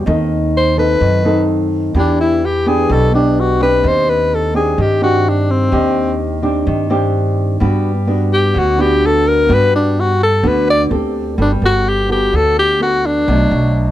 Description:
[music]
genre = bossa nova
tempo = 127 BPM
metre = 4/4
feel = straight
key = G major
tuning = A4 = 443 Hz
[part]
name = nylon-string guitar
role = accompaniment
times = 0.0-13.9 s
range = B2 to A4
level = -17 LUFS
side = equal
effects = none
[part]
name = upright bass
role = bass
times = 0.0-13.9 s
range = G1 to G2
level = -18 LUFS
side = right 1 dB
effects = none
[part]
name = clear alto saxophone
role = melody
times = 0.6-13.9 s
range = C4 to D5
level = -14 LUFS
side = left 2 dB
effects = none
[sound]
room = studio reverb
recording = dry, close 1970s-style studio recording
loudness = -12 LUFS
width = side -13 dB against mid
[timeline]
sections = 0.0-11.4 A section; 11.4-13.9 B section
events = alto saxophone solo 0.0-11.4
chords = 0.1 B7b9/D#; 1.9 Em7; 3.8 Cmadd9/Eb; 7.6 Gmaj7; 10.9 D7sus4; 11.4 Gmaj9; 13.3 Bm7

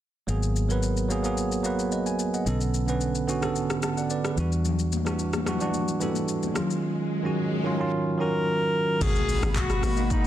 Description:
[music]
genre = amapiano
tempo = 110 BPM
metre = 4/4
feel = straight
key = G# minor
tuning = A4 = 441 Hz
[part]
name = bell-like tine electric piano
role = accompaniment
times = 0.3-10.3 s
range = B2 to A5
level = -26 LUFS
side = right 2 dB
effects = none
[part]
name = fingered electric bass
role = bass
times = 0.3-6.5 s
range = G#1 to E2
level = -28 LUFS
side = left 1 dB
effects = none
[part]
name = deep house drum kit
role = drums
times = 0.3-10.3 s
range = crash cymbal, handclaps, hi-hat, kick drum, rim click, shaker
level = -32 LUFS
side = left 1 dB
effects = overdrive, vintage 12-bit sampler grit
[part]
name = congas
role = percussion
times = 4.6-6.7 s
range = none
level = -32 LUFS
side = left 11 dB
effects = none
[part]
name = swell and impact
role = sound effects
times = 6.3-10.3 s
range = none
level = -34 LUFS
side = left 2 dB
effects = none
[part]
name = breathy alto saxophone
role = melody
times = 8.2-10.3 s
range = D#4 to A#4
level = -27 LUFS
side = left 2 dB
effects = digital delay
[part]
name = ethereal airy pad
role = sustained chords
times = 9.3-10.3 s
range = A#3 to B5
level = -33 LUFS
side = left 3 dB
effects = ensemble chorus, built-in reverb, sidechain pumping
[part]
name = hollow log drum bass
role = bass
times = 9.0-10.3 s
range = G#1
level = -27 LUFS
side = equal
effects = none
[sound]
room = light reverb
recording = dense, heavily limited modern master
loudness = -24 LUFS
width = side -12 dB against mid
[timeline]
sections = 0.3-9.0 A section; 9.0-10.3 B section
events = swell 6.3-9.0; drop 9.0-10.3; impact 9.0-10.3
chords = 0.3 G#m9; 2.5 Bm9; 4.4 Em9; 6.6 D#m9; 9.0 G#m9

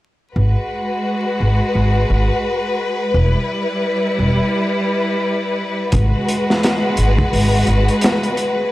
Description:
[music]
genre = trip hop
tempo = 86 BPM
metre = 4/4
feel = swing 60% on 16ths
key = unclear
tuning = A4 = 440 Hz
[part]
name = clear studio string section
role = sustained chords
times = 0.3-8.7 s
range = G3 to B4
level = -18 LUFS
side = left 1 dB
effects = none
[part]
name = upright bass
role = bass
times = 0.4-7.9 s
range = E1 to G#1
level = -16 LUFS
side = equal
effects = none
[part]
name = crunchy breakbeat drum kit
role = drums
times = 5.9-8.6 s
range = hi-hat, kick drum, snare drum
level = -19 LUFS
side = equal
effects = none
[sound]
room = little or no reverb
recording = dry, gritty hardware recording, vinyl crackle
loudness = -15 LUFS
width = side -16 dB against mid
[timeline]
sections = 0.4-8.7 A section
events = none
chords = 0.4 G#m7; 3.1 Em; 5.9 G#m7

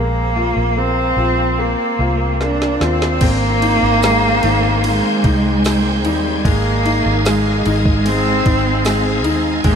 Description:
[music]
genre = pop ballad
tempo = 74 BPM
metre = 4/4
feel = straight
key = unclear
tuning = A4 = 441 Hz
[part]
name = rich cello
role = melody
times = 0.0-9.8 s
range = G3 to D4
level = -17 LUFS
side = right 1 dB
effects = none
[part]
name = bright upright piano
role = accompaniment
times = 0.0-9.8 s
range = Eb3 to F4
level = -21 LUFS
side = left 3 dB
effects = none
[part]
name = vintage muted fingered electric bass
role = bass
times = 0.0-9.8 s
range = Ab1 to Eb2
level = -19 LUFS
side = right 1 dB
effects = none
[part]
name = smooth R&B drum kit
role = drums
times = 2.4-9.8 s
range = crash cymbal, kick drum, ride cymbal, snare drum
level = -22 LUFS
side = right 1 dB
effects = none
[part]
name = bright tonewheel organ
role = sustained chords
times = 3.2-9.8 s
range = C4 to Ab5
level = -24 LUFS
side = right 1 dB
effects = chorus vibrato, slow rotary speaker
[part]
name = tambourine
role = percussion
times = 4.0-9.0 s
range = none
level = -39 LUFS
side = right 11 dB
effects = none
[sound]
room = moderate huge ambient reverb, RT60 7.1 s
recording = dreamy mix soaked in reverb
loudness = -13 LUFS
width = side -7 dB against mid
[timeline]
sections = 0.0-3.2 A section; 3.2-9.8 B section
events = drum fill 2.4-3.2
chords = 0.0 Bbsus2; 3.2 Abmaj7; 6.5 Fm7/Ab

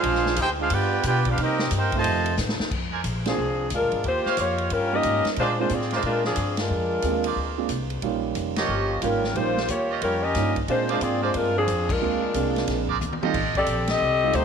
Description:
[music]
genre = jazz, big band swing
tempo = 180 BPM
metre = 4/4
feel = swing 64% on 8ths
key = Bb mixolydian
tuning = A4 = 441 Hz
[part]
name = clear trumpet section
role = melody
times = 0.0-2.4 s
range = C4 to A5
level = -24 LUFS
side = equal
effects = none
[part]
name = warm trombone section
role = second line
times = 0.0-2.4 s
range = C3 to G4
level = -28 LUFS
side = right 10 dB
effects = none
[part]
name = upright bass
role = bass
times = 0.0-14.4 s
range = F1 to C3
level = -29 LUFS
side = left 1 dB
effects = none
[part]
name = swinging big-band drum kit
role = drums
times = 0.0-14.4 s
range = crash cymbal, hi-hat, kick drum, ride cymbal, snare drum, toms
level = -31 LUFS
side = left 1 dB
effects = none
[part]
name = brilliant trumpet section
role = stabs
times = 2.9-13.7 s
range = F4 to Ab5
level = -32 LUFS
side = right 10 dB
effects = none
[part]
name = mellow saxophone section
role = melody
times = 3.3-14.4 s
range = F3 to Eb5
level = -24 LUFS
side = left 2 dB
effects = none
[part]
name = warm grand piano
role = accompaniment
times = 3.3-14.4 s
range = G3 to Ab4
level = -29 LUFS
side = right 11 dB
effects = none
[sound]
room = moderate echo chamber reverb, RT60 2.5 s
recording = 1960s-style stereo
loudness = -21 LUFS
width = side -6 dB against mid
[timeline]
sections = 0.0-2.7 A section; 2.7-14.4 B section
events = drum fill 2.4-2.7, 13.0-13.3; band accent 3.2, 6.5, 8.5, 11.8, 13.8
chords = 0.0 Bb9; 0.7 G7; 1.4 Cm7; 2.0 F7; 2.7 Bb9; 4.0 Eb9; 5.4 Bb9; 8.0 Eb9; 10.7 Bb9; 13.3 F9

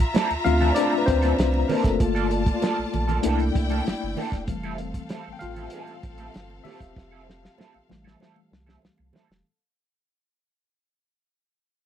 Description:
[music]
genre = lush 1970s-style soul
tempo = 97 BPM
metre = 4/4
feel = straight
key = F major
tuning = A4 = 440 Hz
[part]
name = warm studio string section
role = second line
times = 0.0-9.4 s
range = C4 to Bb5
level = -31 LUFS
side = left 2 dB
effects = none
[part]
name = electric guitar through a small old amp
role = riff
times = 0.0-9.3 s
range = E3 to A4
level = -32 LUFS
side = right 8 dB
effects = wah
[part]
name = warm sub bass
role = bass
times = 0.0-9.4 s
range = E1 to D2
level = -26 LUFS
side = right 1 dB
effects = none
[part]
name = warm soul drum kit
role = drums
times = 0.0-9.4 s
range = hi-hat, kick drum, snare drum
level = -25 LUFS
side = right 1 dB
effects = none
[part]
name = congas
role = percussion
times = 0.1-9.3 s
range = none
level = -34 LUFS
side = right 8 dB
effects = none
[part]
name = tine electric piano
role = accompaniment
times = 0.4-9.5 s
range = E3 to G5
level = -25 LUFS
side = left 4 dB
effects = overdrive, fast stereo tremolo
[sound]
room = little or no reverb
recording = dry, close 1970s-style studio recording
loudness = -21 LUFS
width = side -10 dB against mid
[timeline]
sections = 0.0-9.4 A section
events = fade-out 0.0-9.4; tine electric piano solo 0.0-9.4; drum fill 7.0-9.4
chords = 0.0 Bbmaj9#11; 2.0 Gm9; 3.2 C13; 4.5 Fmaj9

